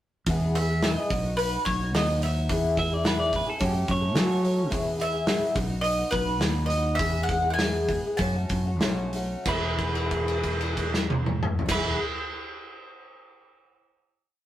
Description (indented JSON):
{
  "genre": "folk rock and heartland rock",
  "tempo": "91-108 BPM",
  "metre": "4/4",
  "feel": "straight",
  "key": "E major",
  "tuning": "A4 = 435 Hz",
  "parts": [
    { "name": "picked twelve-string acoustic guitar", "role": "accompaniment", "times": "0.3-12.0 s", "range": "E2 to A4", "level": "-31 LUFS", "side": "left 2 dB", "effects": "none" },
    { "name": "fingered electric bass", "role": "bass", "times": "0.3-12.0 s", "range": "E1 to F#3", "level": "-28 LUFS", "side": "equal", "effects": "none" },
    { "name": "loose indie drum kit", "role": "drums", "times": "0.3-11.8 s", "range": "crash cymbal, hi-hat, kick drum, snare drum, toms", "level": "-29 LUFS", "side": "equal", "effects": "none" },
    { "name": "bowl-back mandolin", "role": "melody", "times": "0.6-12.0 s", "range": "B4 to A5", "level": "-29 LUFS", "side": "equal", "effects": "none" },
    { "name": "clean electric guitar", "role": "second line", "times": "2.8-4.8, 9.5-12.0 s", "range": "G4 to E5", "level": "-32 LUFS", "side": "right 2 dB", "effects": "none" }
  ],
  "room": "moderate studio reverb, RT60 0.7 s",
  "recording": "rough rehearsal-room recording",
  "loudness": "-23 LUFS",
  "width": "side -12 dB against mid",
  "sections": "0.3-9.5 verse; 9.5-12.1 final chord",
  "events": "slowing down 4.7-9.5; held note 9.5-11.7",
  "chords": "0.3 E; 1.1 B; 2.5 E; 3.6 F#m; 4.7 E; 5.6 B; 7.0 E; 8.2 F#m; 9.5 E"
}